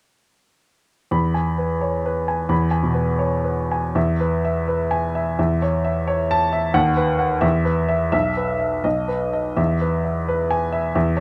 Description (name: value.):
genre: classical, romantic character piece for solo piano.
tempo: 85 BPM.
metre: 2/4.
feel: uneven beats, rubato.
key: E major.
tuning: A4 = 440 Hz.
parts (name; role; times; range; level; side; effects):
clear upright piano; solo; 1.1-11.2 s; B1 to B5; -21 LUFS; equal; none.
room: light reverb.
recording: close, detailed microphones.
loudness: -21 LUFS.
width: mono.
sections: 1.1-4.0 A section; 4.0-11.2 B section.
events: none.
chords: 1.1 E; 5.4 A/E; 6.7 B/D#; 7.4 E5; 8.1 E5/B; 8.8 B; 9.6 E.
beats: | 1.12 1.83 | 2.51 3.20 | 3.96 4.68 | 5.38 6.07 | 6.75 7.43 | 8.13 8.85 | 9.58 10.28 | 10.95.